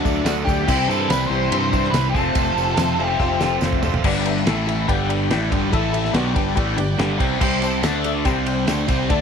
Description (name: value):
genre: classic rock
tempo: 142 BPM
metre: 4/4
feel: straight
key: G major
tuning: A4 = 440 Hz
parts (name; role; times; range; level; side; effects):
- honky-tonk upright piano; accompaniment; 0.0-9.2 s; C4 to B5; -27 LUFS; left 10 dB; none
- bright tonewheel organ; sustained chords; 0.0-9.2 s; G3 to G5; -33 LUFS; right 1 dB; none
- crunchy overdriven guitar; riff; 0.0-9.2 s; F2 to F#4; -24 LUFS; left 11 dB; phaser
- sludgy distorted guitar; riff; 0.0-9.2 s; F2 to F4; -25 LUFS; right 12 dB; overdrive
- growling fingered electric bass; bass; 0.0-9.2 s; F1 to G2; -25 LUFS; right 1 dB; overdrive
- damped 70s drum kit; drums; 0.1-9.2 s; crash cymbal, kick drum, ride cymbal, snare drum, toms; -24 LUFS; right 1 dB; none
- tambourine; percussion; 0.1-3.9, 7.6-9.2 s; none; -40 LUFS; right 16 dB; none
- octave-fuzz lead guitar; melody; 0.3-3.6 s; F#4 to C5; -23 LUFS; equal; distortion
room: light reverb, small room ambience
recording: 1960s-style stereo with parts hard left and right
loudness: -17 LUFS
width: side -6 dB against mid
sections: 0.0-4.0 A section; 4.0-9.2 B section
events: drum fill 3.2-4.0; honky-tonk piano fill 3.2-4.0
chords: 0.0 D; 0.7 C; 2.1 F; 4.0 G; 4.5 A5; 4.9 G; 5.7 A5; 6.1 G; 7.4 C5; 7.8 D5; 8.3 C5